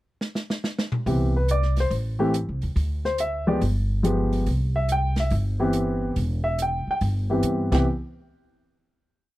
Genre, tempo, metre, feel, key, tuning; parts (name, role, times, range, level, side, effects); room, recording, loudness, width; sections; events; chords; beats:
jazz piano trio; 141 BPM; 4/4; swing 66% on 8ths; C major; A4 = 440 Hz
open jazz drum kit; drums; 0.2-7.8 s; crash cymbal, hi-hat, kick drum, snare drum, toms; -29 LUFS; right 1 dB
dark baby grand piano; melody; 1.1-7.9 s; E3 to G5; -24 LUFS; left 1 dB
upright bass; bass; 1.1-7.9 s; E1 to G2; -24 LUFS; equal
studio ambience; dry, close 1970s-style studio recording; -22 LUFS; side -16 dB against mid
0.0-1.1 pickup bar; 1.1-7.9 A section; 7.9-9.4 final hit
drum fill 0.2-1.1
0.0 N.C.; 1.1 Cmaj7; 1.9 Am; 2.8 N.C.; 3.6 G7b9; 4.5 Cmaj7; 7.9 N.C.
0.21 0.63 | 1.06 1.48 1.91 2.34 | 2.76 3.19 3.61 4.04 | 4.46 4.89 5.31 5.74 | 6.16 6.59 7.01 7.44 | 7.86